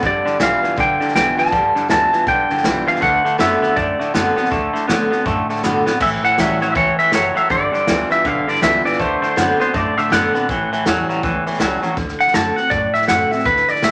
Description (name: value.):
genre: rockabilly.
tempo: 161 BPM.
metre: 4/4.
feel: swing 61% on 8ths.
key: D mixolydian.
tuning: A4 = 439 Hz.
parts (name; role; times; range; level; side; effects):
picked steel-string acoustic guitar; accompaniment; 0.0-13.9 s; E2 to F#4; -26 LUFS; equal; none.
twangy electric guitar; riff; 0.0-12.0 s; G2 to B3; -23 LUFS; equal; none.
upright bass; bass; 0.0-13.9 s; F#1 to A2; -32 LUFS; equal; none.
vintage drum kit; drums; 0.0-13.9 s; crash cymbal, hi-hat, kick drum, snare drum; -26 LUFS; equal; none.
electric guitar through a small old amp; melody; 0.1-13.9 s; B4 to A5; -19 LUFS; equal; spring reverb.
room: moderate studio reverb, RT60 0.8 s.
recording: none.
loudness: -17 LUFS.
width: mono.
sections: 0.0-12.0 A section; 12.0-13.9 B section.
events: drum fill 5.6-6.0; clean electric guitar solo 12.0-13.9.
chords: 0.0 G7; 3.0 D7; 6.0 A7; 7.5 G7; 9.0 D7; 10.5 A7; 12.0 D7.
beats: | 0.03 0.41 0.78 1.15 | 1.52 1.90 2.27 2.64 | 3.02 3.39 3.77 4.14 | 4.51 4.89 5.26 5.63 | 6.01 6.38 6.75 7.13 | 7.50 7.87 8.24 8.62 | 8.99 9.36 9.74 10.11 | 10.48 10.85 11.23 11.60 | 11.97 12.34 12.71 13.09 | 13.46 13.83.